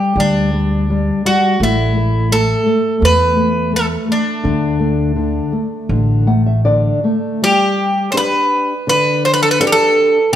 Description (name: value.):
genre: fado-style ballad.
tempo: 83 BPM.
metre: 4/4.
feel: rubato.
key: D major.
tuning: A4 = 443 Hz.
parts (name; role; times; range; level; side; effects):
Greek bouzouki; melody; 0.0-10.4 s; D4 to C5; -15 LUFS; right 1 dB; none.
nylon-string guitar; accompaniment; 0.0-10.4 s; C3 to F#5; -17 LUFS; left 2 dB; none.
upright bass; bass; 0.2-6.9 s; A1 to E2; -17 LUFS; equal; none.
room: moderate recital hall reverb, RT60 1.6 s.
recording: none.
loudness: -12 LUFS.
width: side -10 dB against mid.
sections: 0.0-7.4 A section; 7.4-10.4 B section.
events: nylon-string guitar fill 5.9-7.4.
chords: 0.0 G5; 1.6 A5; 4.4 D5; 7.4 G.